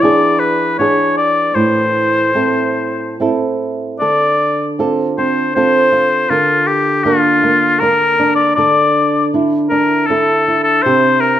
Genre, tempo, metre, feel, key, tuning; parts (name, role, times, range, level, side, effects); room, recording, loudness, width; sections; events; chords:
celtic folk, Celtic slow air; 79 BPM; 3/4; rubato; D minor; A4 = 442 Hz
warm oboe; melody; 0.0-11.4 s; F4 to D5; -13 LUFS; left 2 dB
flamenco guitar; accompaniment; 0.0-11.4 s; A2 to Bb4; -16 LUFS; right 3 dB
moderate recital hall reverb, RT60 1.4 s; minimal, uncompressed stereo recording; -11 LUFS; side -11 dB against mid
0.0-4.0 A section; 4.0-11.4 B section
0.0 E7; 1.5 Am; 4.0 Dm7; 6.3 Bb/D; 8.6 Dsus2; 10.8 Cadd9